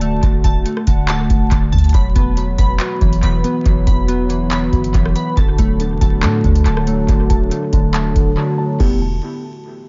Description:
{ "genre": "hip hop, trap", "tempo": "140 BPM", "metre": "4/4", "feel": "half-time", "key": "unclear", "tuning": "A4 = 440 Hz", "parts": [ { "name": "hollow clarinet-like synth lead", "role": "second line", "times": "0.0-1.5 s", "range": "F#5 to A5", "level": "-35 LUFS", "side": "equal", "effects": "chorus, phaser, tape echo" }, { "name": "deep dark ambient pad", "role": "sustained chords", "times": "0.0-9.0 s", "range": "D3 to F#4", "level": "-29 LUFS", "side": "equal", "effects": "chorus, built-in reverb, low-pass filter" }, { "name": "glassy digital keys", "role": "arpeggios", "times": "0.0-9.0 s", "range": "D3 to B5", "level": "-23 LUFS", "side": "equal", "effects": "chorus, low-pass filter, tape echo" }, { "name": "warm 808-style bass", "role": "bass", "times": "0.0-9.2 s", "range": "D1 to A2", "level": "-20 LUFS", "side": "equal", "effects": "none" }, { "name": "booming analog drum machine", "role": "drums", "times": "0.0-9.0 s", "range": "crash cymbal, handclaps, hi-hat, kick drum, rim click", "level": "-19 LUFS", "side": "equal", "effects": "tape echo" }, { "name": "overdriven tine electric piano", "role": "accompaniment", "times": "1.9-9.0 s", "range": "D3 to G4", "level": "-25 LUFS", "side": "equal", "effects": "ensemble chorus, low-pass filter" } ], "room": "digital ambience", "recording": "echo-heavy mix, vinyl crackle, nothing above 7.5 kHz", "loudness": "-15 LUFS", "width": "mono", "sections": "0.0-1.9 A section; 1.9-8.8 B section; 8.8-9.9 C section", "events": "filter sweep 1.9-8.8; break 8.4-8.8", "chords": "0.0 D; 1.9 Esus2; 5.4 D; 8.8 Em", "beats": "| 0.23 0.66 1.08 1.51 | 1.94 2.37 2.80 3.23 | 3.66 4.08 4.51 4.94 | 5.37 5.80 6.23 6.66 | 7.08 7.51 7.94 8.37 | 8.80" }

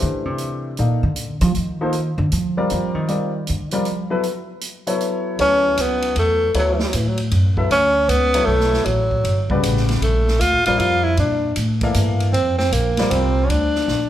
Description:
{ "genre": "modal jazz", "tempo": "156 BPM", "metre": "3/4", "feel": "swing 65% on 8ths", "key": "D major from 5.4 s", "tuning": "A4 = 444 Hz", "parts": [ { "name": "clear grand piano", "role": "accompaniment", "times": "0.0-13.5 s", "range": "C#3 to F5", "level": "-24 LUFS", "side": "left 2 dB", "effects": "none" }, { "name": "upright bass", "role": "bass", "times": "0.0-14.1 s", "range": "G1 to F3", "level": "-20 LUFS", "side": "equal", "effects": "none" }, { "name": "swinging big-band drum kit", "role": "drums", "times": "0.0-14.0 s", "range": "hi-hat, kick drum, ride cymbal, snare drum", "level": "-28 LUFS", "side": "right 1 dB", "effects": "none" }, { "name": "warm tenor saxophone", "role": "melody", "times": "5.4-14.1 s", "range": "E3 to F4", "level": "-18 LUFS", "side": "equal", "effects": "none" } ], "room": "moderate large studio reverb, RT60 1.4 s", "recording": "band playing live in one room", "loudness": "-16 LUFS", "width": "side -12 dB against mid", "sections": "0.0-5.4 A section; 5.4-14.1 B section", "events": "upright bass solo 0.0-5.4; drum fill 13.9", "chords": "0.0 Fmaj9 (rootless); 0.8 Ebmaj9; 4.2 Aadd9; 5.4 Dmaj9; 10.0 Bbmaj9", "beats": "0.00 0.39 | 0.77 1.16 1.54 | 1.93 2.31 2.69 | 3.08 3.46 3.85 | 4.24 4.62 5.00 | 5.39 5.78 6.16 | 6.55 6.93 7.32 | 7.70 8.09 8.48 | 8.86 9.25 9.63 | 10.02 10.41 10.79 | 11.18 11.56 11.95 | 12.34 12.72 13.11 | 13.50 13.88" }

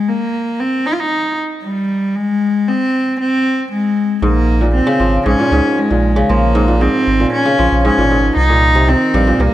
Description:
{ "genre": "folktronica", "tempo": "116 BPM", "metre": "4/4", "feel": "straight", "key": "Bb dorian", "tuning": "A4 = 439 Hz", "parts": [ { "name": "rich cello", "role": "melody", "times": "0.0-9.5 s", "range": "G3 to F4", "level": "-14 LUFS", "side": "equal", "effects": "tape echo" }, { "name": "kora", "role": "arpeggios", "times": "4.2-9.5 s", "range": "G2 to F3", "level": "-16 LUFS", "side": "equal", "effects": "none" }, { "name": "warm sub bass", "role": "bass", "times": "4.2-9.5 s", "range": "Ab1 to Db2", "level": "-15 LUFS", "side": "equal", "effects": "none" } ], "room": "light reverb", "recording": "none", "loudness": "-12 LUFS", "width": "side -13 dB against mid", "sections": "0.0-4.2 A section; 4.2-9.5 B section", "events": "none", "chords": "0.0 N.C.; 4.2 Bbm7; 8.4 Cm7", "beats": "| 0.08 0.60 1.12 1.64 | 2.15 2.67 3.19 3.70 | 4.22 4.74 5.26 5.77 | 6.29 6.81 7.33 7.84 | 8.36 8.88 9.39" }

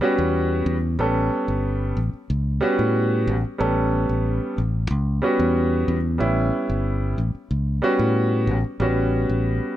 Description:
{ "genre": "electric jazz fusion", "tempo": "92 BPM", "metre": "4/4", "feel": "straight", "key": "A mixolydian", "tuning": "A4 = 443 Hz", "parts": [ { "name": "clear concert grand piano", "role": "accompaniment", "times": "0.0-9.8 s", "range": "G3 to A4", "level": "-22 LUFS", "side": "right 1 dB", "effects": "none" }, { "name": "fingered electric bass", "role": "bass", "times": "0.2-9.6 s", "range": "G1 to A2", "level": "-22 LUFS", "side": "left 1 dB", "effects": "none" } ], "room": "light reverb", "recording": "none", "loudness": "-20 LUFS", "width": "side -13 dB against mid", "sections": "0.0-9.8 A section", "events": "none", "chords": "0.0 A13", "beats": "0.34 | 0.99 1.65 2.29 2.95 | 3.60 4.25 4.90 5.55 | 6.20 6.85 7.50 8.15 | 8.80 9.45" }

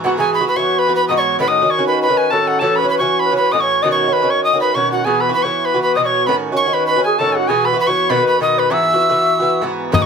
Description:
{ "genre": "celtic folk, Celtic reel", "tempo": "197 BPM", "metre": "4/4", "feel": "swing 55% on 8ths", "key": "E major", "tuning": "A4 = 440 Hz", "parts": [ { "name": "breathy bright tin whistle", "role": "melody", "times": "0.0-10.1 s", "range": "F#5 to E6", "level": "-17 LUFS", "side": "right 2 dB", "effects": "none" }, { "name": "wooden flute", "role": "second line", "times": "0.0-10.1 s", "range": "F#4 to E5", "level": "-18 LUFS", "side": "left 4 dB", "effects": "none" }, { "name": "Irish bouzouki", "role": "accompaniment", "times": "0.0-10.1 s", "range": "G#2 to F#4", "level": "-19 LUFS", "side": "right 2 dB", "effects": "none" }, { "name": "bodhran", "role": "percussion", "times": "9.9-10.1 s", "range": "none", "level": "-14 LUFS", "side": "left 4 dB", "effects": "none" } ], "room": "moderate studio reverb, RT60 0.5 s", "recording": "none", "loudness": "-13 LUFS", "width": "side -6 dB against mid", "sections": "0.2-9.9 A section", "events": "none", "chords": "0.2 Eadd9; 1.4 D#m7b5; 2.6 A6; 3.8 Badd9; 5.1 Esus2; 6.3 D#m7b5; 7.5 Bsus4; 8.1 B; 8.7 Eadd9", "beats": "| 0.17 0.48 0.78 1.09 | 1.39 1.70 2.00 2.31 | 2.61 2.92 3.22 3.53 | 3.83 4.14 4.44 4.75 | 5.05 5.36 5.66 5.97 | 6.27 6.58 6.88 7.19 | 7.49 7.80 8.10 8.41 | 8.71 9.02 9.32 9.62 | 9.93" }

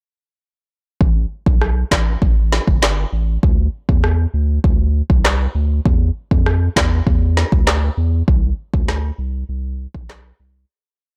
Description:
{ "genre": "dancehall", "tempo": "99 BPM", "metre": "4/4", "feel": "straight", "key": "unclear", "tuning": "A4 = 438 Hz", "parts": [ { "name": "saturated sub bass", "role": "bass", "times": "1.0-10.7 s", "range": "G1 to F2", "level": "-20 LUFS", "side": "equal", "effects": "none" }, { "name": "afro-pop drum kit", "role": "drums", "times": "1.0-10.2 s", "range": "handclaps, kick drum, rim click, snare drum", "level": "-18 LUFS", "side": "equal", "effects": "none" } ], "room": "little or no reverb", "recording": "blown-out, overdriven recording, overdrive", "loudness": "-17 LUFS", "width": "mono", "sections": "1.0-10.7 verse", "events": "fade-out 8.3-10.7", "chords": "none", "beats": "| 1.00 1.61 2.22 2.82 | 3.43 4.04 4.64 5.25 | 5.85 6.46 7.07 7.67 | 8.28 8.88 9.49 10.10" }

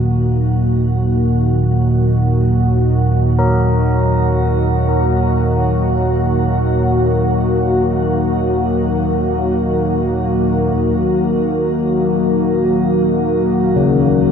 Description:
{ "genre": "dark ambient drone", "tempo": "free time", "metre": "none", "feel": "none", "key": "Eb minor", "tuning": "A4 = 440 Hz", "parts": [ { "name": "sweeping resonant pad", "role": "sustained chords", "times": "0.0-14.3 s", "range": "Eb3 to Gb4", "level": "-16 LUFS", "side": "left 1 dB", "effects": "chorus, shimmer reverb" }, { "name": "deep rumbling drone", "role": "drone", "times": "0.0-14.3 s", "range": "Eb2 to Bb2", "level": "-17 LUFS", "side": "right 1 dB", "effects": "built-in reverb" }, { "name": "carillon bells", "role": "arpeggios", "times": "3.4-14.3 s", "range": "Db3 to Bb4", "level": "-21 LUFS", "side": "left 4 dB", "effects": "ping-pong delay, shimmer reverb" } ], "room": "moderate huge ambient reverb, RT60 7.9 s", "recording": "none", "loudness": "-13 LUFS", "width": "side -7 dB against mid", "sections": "0.0-10.8 A section; 10.8-14.3 B section", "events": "filter sweep on synth drone 10.8-14.3", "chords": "0.0 Ebm", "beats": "free time" }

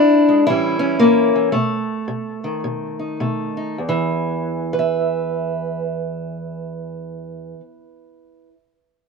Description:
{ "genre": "acoustic country blues, solo or duo", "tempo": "102-115 BPM", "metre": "4/4", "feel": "swing 61% on 8ths", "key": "unclear", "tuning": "A4 = 440 Hz", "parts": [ { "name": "fingerpicked steel-string acoustic guitar", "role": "solo", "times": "0.0-8.5 s", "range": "E2 to E5", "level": "-18 LUFS", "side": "equal", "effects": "slapback echo" } ], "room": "light reverb", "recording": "recorded outdoors, with no room sound", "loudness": "-17 LUFS", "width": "side -4 dB against mid", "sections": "0.0-3.8 A section; 3.8-8.5 B section", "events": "slowing down 0.0-3.8", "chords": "0.5 A7; 1.5 B7; 3.8 E5", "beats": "0.48 1.01 | 1.54 2.09 2.64 3.21 | 3.79 4.38 4.96 5.55 | 6.14 6.72 7.31 7.90" }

